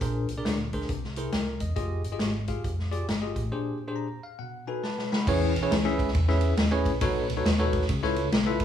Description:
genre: uptempo gospel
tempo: 137 BPM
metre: 4/4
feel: swing 64% on 8ths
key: E major from 5.3 s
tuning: A4 = 440 Hz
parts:
  - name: bell-like tine electric piano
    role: accompaniment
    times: 0.0-8.6 s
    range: Bb2 to B5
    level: -29 LUFS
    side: left 1 dB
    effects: medium stereo tremolo
  - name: hollow-body short-scale fingered electric bass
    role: bass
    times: 0.0-8.6 s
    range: E1 to E2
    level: -30 LUFS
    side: equal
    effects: none
  - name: swinging big-band drum kit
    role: drums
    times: 0.0-8.6 s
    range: crash cymbal, hi-hat, kick drum, ride cymbal, snare drum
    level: -28 LUFS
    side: left 1 dB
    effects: none
room: moderate large studio reverb, RT60 1.2 s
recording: band playing live in one room, studio reverb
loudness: -25 LUFS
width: side -9 dB against mid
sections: 0.0-5.3 A section; 5.3-8.6 B section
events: break 3.5-5.3; tine electric piano fill 4.0-5.3; drum fill 4.8-5.3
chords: 0.0 Bb9; 0.9 Caug7; 1.8 Fm9; 3.5 Bb13; 4.4 B7; 5.3 E6; 7.0 B9; 7.9 C#7alt

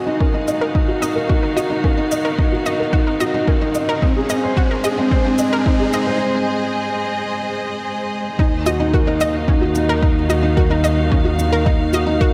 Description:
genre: piano and strings electronica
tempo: 110 BPM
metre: 4/4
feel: straight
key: Eb dorian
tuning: A4 = 439 Hz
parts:
  - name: rich studio string section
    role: sustained chords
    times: 0.0-12.3 s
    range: Eb3 to F5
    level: -27 LUFS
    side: equal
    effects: sidechain pumping
  - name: felt-muted upright piano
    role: riff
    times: 0.0-12.3 s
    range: C4 to Eb5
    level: -22 LUFS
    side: equal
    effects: delay
  - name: riser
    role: sound effects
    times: 0.5-6.2 s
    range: none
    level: -34 LUFS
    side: equal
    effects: none
  - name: analog pluck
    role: arpeggios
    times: 0.2-12.3 s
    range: C4 to Eb5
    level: -28 LUFS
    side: equal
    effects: chorus, sidechain pumping, delay
  - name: electronic kick drum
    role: drums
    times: 0.2-12.3 s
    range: none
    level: -20 LUFS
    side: equal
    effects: none
  - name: shaker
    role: drums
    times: 0.5-12.0 s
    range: none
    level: -35 LUFS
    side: equal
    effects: none
  - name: warm studio double bass section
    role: bass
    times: 8.4-12.3 s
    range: Eb2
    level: -23 LUFS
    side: equal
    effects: sidechain pumping
room: moderate echo chamber reverb, RT60 1.7 s, small room reverb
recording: none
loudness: -18 LUFS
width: mono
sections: 0.0-8.4 A section; 8.4-12.3 B section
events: build-up 0.0-8.4; filter sweep on synth arpeggio sound 0.0-8.4; riser 0.5-6.2; break 6.2-8.4; drop 8.4-12.3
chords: 0.0 Ebmadd9; 4.0 Ab; 8.4 Ebmadd9

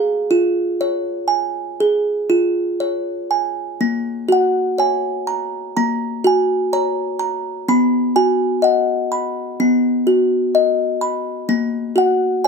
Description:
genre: children's music, lullaby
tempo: 62 BPM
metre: 4/4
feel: rubato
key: F# major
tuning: A4 = 439 Hz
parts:
  - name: music box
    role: solo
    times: 0.0-12.5 s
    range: A#3 to B5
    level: -16 LUFS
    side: equal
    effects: none
room: moderate studio reverb, RT60 0.7 s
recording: dark, warm production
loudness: -16 LUFS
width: side -5 dB against mid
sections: 0.0-3.8 A section; 3.8-12.5 A section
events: none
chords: 0.0 C#; 3.8 F#; 7.7 B; 11.5 F#/A#

